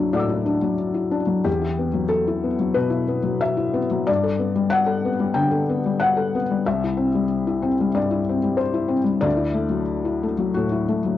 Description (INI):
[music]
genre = neoclassical minimalist piano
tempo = 92 BPM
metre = 4/4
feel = rubato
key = unclear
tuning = A4 = 443 Hz
[part]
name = felt-muted upright piano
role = solo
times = 0.0-11.2 s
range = C2 to E6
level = -19 LUFS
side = left 3 dB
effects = cassette tape
[sound]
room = wet booth ambience, RT60 0.3 s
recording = home recording on cassette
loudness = -19 LUFS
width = side -12 dB against mid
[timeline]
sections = 0.0-11.2 A section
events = none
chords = 0.0 Dadd9; 1.5 Emadd9; 4.1 Gadd9; 6.7 C; 9.3 Dadd9